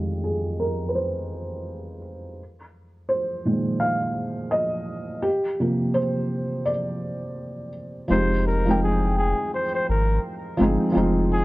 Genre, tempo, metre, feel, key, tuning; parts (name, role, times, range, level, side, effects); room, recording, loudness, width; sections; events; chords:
lo-fi hip hop; 84 BPM; 4/4; swing 58% on 16ths; F dorian; A4 = 440 Hz
felt-muted upright piano; accompaniment; 0.0-11.4 s; F2 to G5; -23 LUFS; right 1 dB; low-pass filter
warm flugelhorn; melody; 8.1-11.4 s; Ab4 to C5; -26 LUFS; equal; low-pass filter
warm sub bass; bass; 8.1-11.4 s; F1 to Ab1; -23 LUFS; equal
light reverb; dry, gritty hardware recording; -21 LUFS; side -19 dB against mid
0.0-8.1 A section; 8.1-11.4 B section
felt piano solo 0.0-8.1; filter sweep on felt piano 0.0-8.1
0.0 Fm9; 2.4 Bb9sus4; 5.2 C9sus4; 8.1 Fm9